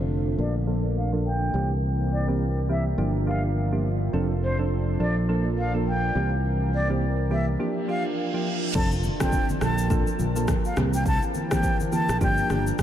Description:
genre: afrobeats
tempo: 104 BPM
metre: 4/4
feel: swing 58% on 16ths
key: unclear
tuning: A4 = 445 Hz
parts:
  - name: soft electric-piano-like synth keys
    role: accompaniment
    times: 0.0-12.7 s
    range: E3 to A4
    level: -30 LUFS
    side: right 2 dB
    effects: chorus, low-pass filter
  - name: lush unison pad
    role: sustained chords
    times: 0.0-12.8 s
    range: D3 to C5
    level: -31 LUFS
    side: equal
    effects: chorus, low-pass filter
  - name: fingered electric bass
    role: bass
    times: 0.0-12.8 s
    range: F1 to C2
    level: -25 LUFS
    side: equal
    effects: none
  - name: breathy concert flute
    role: melody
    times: 0.4-12.6 s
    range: C5 to A5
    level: -30 LUFS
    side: equal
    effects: low-pass filter, analog delay
  - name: reverse cymbal and impact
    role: sound effects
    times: 7.9-11.1 s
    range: none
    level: -36 LUFS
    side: right 2 dB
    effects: none
  - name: afro-pop drum kit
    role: drums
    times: 8.7-12.8 s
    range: crash cymbal, kick drum, rim click, shaker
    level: -28 LUFS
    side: equal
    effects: none
  - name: congas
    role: percussion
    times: 9.0-12.8 s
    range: none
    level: -34 LUFS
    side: left 2 dB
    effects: none
room: moderate cathedral reverb, RT60 6.4 s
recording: dreamy mix soaked in reverb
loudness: -22 LUFS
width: side -11 dB against mid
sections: 0.0-8.7 A section; 8.7-12.8 B section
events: filter sweep 0.0-8.7; break 7.6-8.7; reverse cymbal 7.9-8.7; impact 8.7-11.1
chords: 0.4 Bbmaj7; 1.5 C7; 3.0 Gm7; 4.1 F6; 5.0 Bbmaj7; 6.2 C7; 7.6 Gm7; 8.7 F6; 9.6 Bbmaj7; 10.8 C7; 12.2 Gm7

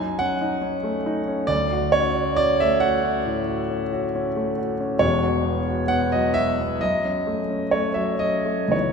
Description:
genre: classical, impressionist solo piano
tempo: 56-71 BPM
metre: 4/4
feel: rubato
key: unclear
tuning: A4 = 440 Hz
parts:
  - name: warm concert grand piano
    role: solo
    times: 0.0-8.9 s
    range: E1 to G#5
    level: -20 LUFS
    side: equal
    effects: none
room: wet concert hall reverb, RT60 2.3 s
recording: heard from further back in the room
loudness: -20 LUFS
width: side -5 dB against mid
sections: 0.0-8.9 A section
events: none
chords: 0.0 F#m6; 1.5 Dmaj7; 5.0 Esus2; 6.8 F#m6

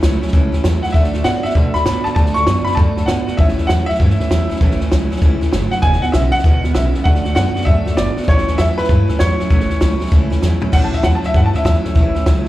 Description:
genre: rockabilly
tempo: 196 BPM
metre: 4/4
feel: swing 64% on 8ths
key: A major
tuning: A4 = 440 Hz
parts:
  - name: picked steel-string acoustic guitar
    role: accompaniment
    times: 0.0-12.5 s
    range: E2 to F#4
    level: -26 LUFS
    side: left 3 dB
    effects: slapback echo
  - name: electric guitar through a small old amp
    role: riff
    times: 0.0-12.4 s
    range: E2 to B3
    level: -23 LUFS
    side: right 3 dB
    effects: slapback echo
  - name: upright bass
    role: bass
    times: 0.0-12.5 s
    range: E1 to B2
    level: -18 LUFS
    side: equal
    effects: none
  - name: compact cocktail drum kit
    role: drums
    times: 0.0-12.5 s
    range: crash cymbal, hi-hat, kick drum, snare drum, toms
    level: -17 LUFS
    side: equal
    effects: none
  - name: bright upright piano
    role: melody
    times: 0.8-12.5 s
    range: B4 to C#6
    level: -20 LUFS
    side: equal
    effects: slapback echo
room: little or no reverb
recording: live gig heard through the venue's PA, club reverb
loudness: -13 LUFS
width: side -15 dB against mid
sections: 0.0-10.7 A section; 10.7-12.5 B section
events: drum fill 10.4-10.7; upright piano solo 10.7-12.5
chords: 0.0 A; 0.9 D; 3.4 A; 5.8 E; 7.1 D; 8.3 A

